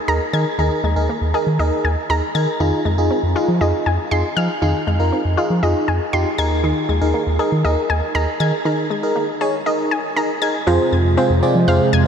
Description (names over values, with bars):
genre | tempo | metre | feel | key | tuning
pop | 119 BPM | 4/4 | straight | unclear | A4 = 440 Hz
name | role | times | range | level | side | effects
analog pluck | arpeggios | 0.0-12.1 s | Eb3 to Ab6 | -22 LUFS | left 2 dB | chorus, ping-pong delay
FM electric piano | accompaniment | 0.1-11.9 s | C4 to D5 | -20 LUFS | equal | chorus, phaser
round analog bass | bass | 0.1-12.0 s | Eb2 to F3 | -19 LUFS | equal | none
chorused pulse-width pad | sustained chords | 10.7-12.1 s | C3 to F4 | -18 LUFS | right 2 dB | lush chorus
room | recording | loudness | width
wet huge ambient reverb, RT60 8.5 s | dreamy mix soaked in reverb | -16 LUFS | side -7 dB against mid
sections
0.0-10.7 A section; 10.7-12.1 B section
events
none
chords
0.0 Ebsus4; 2.6 Fm7; 6.4 Ebsus4; 10.7 Fm